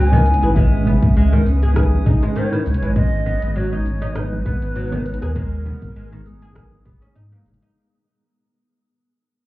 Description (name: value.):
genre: organic downtempo.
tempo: 100 BPM.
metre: 4/4.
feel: swing 55% on 16ths.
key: G# minor.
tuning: A4 = 439 Hz.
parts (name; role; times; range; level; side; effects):
breathy bright low ney; melody; 0.0-7.5 s; G#4 to G#5; -28 LUFS; equal; tape echo.
deep mellow chord stab; accompaniment; 0.0-7.5 s; B3 to C#5; -29 LUFS; equal; analog chorus, sidechain pumping, ping-pong delay.
granular cloud pad; sustained chords; 0.0-7.7 s; G#3 to A#5; -28 LUFS; right 1 dB; built-in reverb, sidechain pumping.
oud; arpeggios; 0.0-7.7 s; D#3 to G#4; -24 LUFS; equal; ping-pong delay.
warm sub bass; bass; 0.0-7.6 s; F#1 to G#2; -18 LUFS; equal; none.
drifting glass-harmonics texture; texture; 0.0-7.8 s; D#6; -47 LUFS; right 4 dB; none.
congas; percussion; 0.1-7.7 s; none; -25 LUFS; right 1 dB; none.
deep house drum kit; drums; 0.3-7.7 s; cabasa, hi-hat, rim click; -34 LUFS; right 1 dB; none.
electronic kick drum; drums; 0.6-7.0 s; none; -19 LUFS; equal; none.
room: light reverb, digital ambience.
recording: heard muffled through a wall, club ambience, EQ.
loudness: -16 LUFS.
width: side -18 dB against mid.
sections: 0.0-7.8 A section.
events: fade-out 1.4-7.8.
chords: 0.0 C#m7; 3.0 G#madd9.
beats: | 0.56 1.16 1.76 2.36 | 2.96 3.56 4.16 4.76 | 5.36 5.96 6.56 7.16.